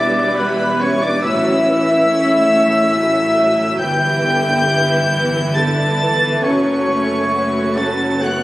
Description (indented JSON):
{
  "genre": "cinematic",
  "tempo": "69 BPM",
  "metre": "3/4",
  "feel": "rubato",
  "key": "E dorian",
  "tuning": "A4 = 440 Hz",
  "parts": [
    { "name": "warm symphonic violin section", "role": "melody", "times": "0.0-8.4 s", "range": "B5 to A6", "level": "-22 LUFS", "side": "left 1 dB", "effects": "none" },
    { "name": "silver concert flute", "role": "second line", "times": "0.0-8.4 s", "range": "B4 to A5", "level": "-21 LUFS", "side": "left 1 dB", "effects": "none" },
    { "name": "warm oboe", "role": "second line", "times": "0.0-8.4 s", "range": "B4 to A5", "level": "-21 LUFS", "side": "equal", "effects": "none" },
    { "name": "warm studio violin section", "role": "second line", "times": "0.0-8.4 s", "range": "C#4 to E5", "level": "-24 LUFS", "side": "equal", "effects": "none" },
    { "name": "dark symphonic viola section", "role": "accompaniment", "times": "0.0-8.4 s", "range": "D3 to C#4", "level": "-21 LUFS", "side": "right 1 dB", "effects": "none" },
    { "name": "dark French horn section", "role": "sustained chords", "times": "0.0-8.4 s", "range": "B3 to A4", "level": "-22 LUFS", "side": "left 1 dB", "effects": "none" },
    { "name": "dark chamber double bass section", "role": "bass", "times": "0.0-8.4 s", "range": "E1 to A1", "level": "-25 LUFS", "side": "equal", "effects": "none" },
    { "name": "warm symphonic cello section", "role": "bass", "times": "0.0-8.4 s", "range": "E2 to A2", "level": "-29 LUFS", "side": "right 1 dB", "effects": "none" }
  ],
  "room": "wet concert hall reverb, RT60 2.2 s",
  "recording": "recorded on a phone in the room, studio ambience, compression",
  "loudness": "-13 LUFS",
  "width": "side -17 dB against mid",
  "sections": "0.0-8.4 A section",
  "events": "none",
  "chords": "0.0 Em; 1.2 Aadd9; 3.8 Em/G; 6.4 F#m"
}